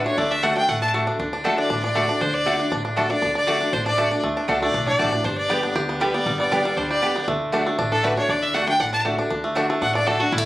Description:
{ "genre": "bluegrass", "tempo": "236 BPM", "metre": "4/4", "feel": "straight", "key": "D major", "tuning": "A4 = 442 Hz", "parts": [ { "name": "clear fiddle", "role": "melody", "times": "0.0-10.4 s", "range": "E4 to A5", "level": "-22 LUFS", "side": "equal", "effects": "none" }, { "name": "picked steel-string acoustic guitar", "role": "accompaniment", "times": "0.0-10.5 s", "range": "G2 to G4", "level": "-27 LUFS", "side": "left 1 dB", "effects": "none" }, { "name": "bluegrass banjo", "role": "arpeggios", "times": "0.0-10.5 s", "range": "D3 to G4", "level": "-25 LUFS", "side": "right 1 dB", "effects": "none" }, { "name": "upright bass", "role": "bass", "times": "0.0-10.5 s", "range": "G1 to D2", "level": "-31 LUFS", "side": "equal", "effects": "none" }, { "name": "mandolin", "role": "stabs", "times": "0.4-10.2 s", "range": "A3 to A5", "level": "-24 LUFS", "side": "right 1 dB", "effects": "none" } ], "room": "little or no reverb", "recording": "recorded on a phone in the room, club ambience", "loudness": "-19 LUFS", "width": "side -16 dB against mid", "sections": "0.0-1.2 A section; 1.2-9.3 A section; 9.3-10.5 B section", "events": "none", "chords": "0.0 D; 5.2 G; 7.3 D", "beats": "| 0.18 0.43 0.68 0.94 | 1.19 1.45 1.70 1.95 | 2.21 2.46 2.71 2.97 | 3.22 3.48 3.73 3.98 | 4.24 4.49 4.74 5.00 | 5.25 5.50 5.76 6.01 | 6.26 6.52 6.77 7.03 | 7.28 7.53 7.79 8.04 | 8.29 8.55 8.80 9.06 | 9.31 9.56 9.82 10.07 | 10.33" }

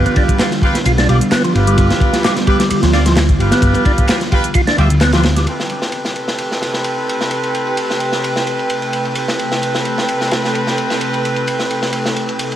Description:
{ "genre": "breakbeat, breaks", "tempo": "130 BPM", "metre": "4/4", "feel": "swing 53% on 16ths", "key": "A minor", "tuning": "A4 = 440 Hz", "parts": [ { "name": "warbly tape-like pad", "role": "sustained chords", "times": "0.0-12.6 s", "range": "C3 to B4", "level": "-22 LUFS", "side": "right 1 dB", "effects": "chorus, built-in reverb, sidechain pumping" }, { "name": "percussive tonewheel organ", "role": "riff", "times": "0.0-5.5 s", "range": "F3 to F4", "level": "-19 LUFS", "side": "equal", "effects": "overdrive, chorus vibrato, fast rotary speaker, low-pass filter, tape echo" }, { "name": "clear horn section", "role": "stabs", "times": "0.0-12.6 s", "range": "C4 to E5", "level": "-19 LUFS", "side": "right 1 dB", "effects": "low-pass filter, tape echo" }, { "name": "hollow-body short-scale picked electric bass", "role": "bass", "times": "0.0-5.4 s", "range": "G1 to D2", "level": "-14 LUFS", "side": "equal", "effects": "none" }, { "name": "crunchy breakbeat drum kit", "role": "drums", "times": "0.1-12.6 s", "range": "kick drum, ride cymbal, snare drum", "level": "-18 LUFS", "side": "equal", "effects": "high-pass filter on kick, high-pass filter on cymbals, high-pass filter on snare, high-pass filter on room" }, { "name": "garage drum kit", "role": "drums", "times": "0.1-12.6 s", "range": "handclaps, hi-hat", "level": "-28 LUFS", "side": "equal", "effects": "low-pass filter on hats, low-pass filter on snare, low-pass filter on room" } ], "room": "light reverb", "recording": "vinyl crackle", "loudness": "-13 LUFS", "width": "side -11 dB against mid", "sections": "0.0-5.5 A section; 5.5-12.6 B section", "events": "filter sweep on horn section 5.5-12.6; filter sweep on ambient pad 5.5-12.6", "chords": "0.0 G7; 5.5 Am9", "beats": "0.40 0.86 1.32 | 1.78 2.24 2.70 3.17 | 3.63 4.09 4.55 5.01 | 5.47 5.93 6.40 6.86 | 7.32 7.78 8.24 8.70 | 9.16 9.63 10.09 10.55 | 11.01 11.47 11.93 12.40" }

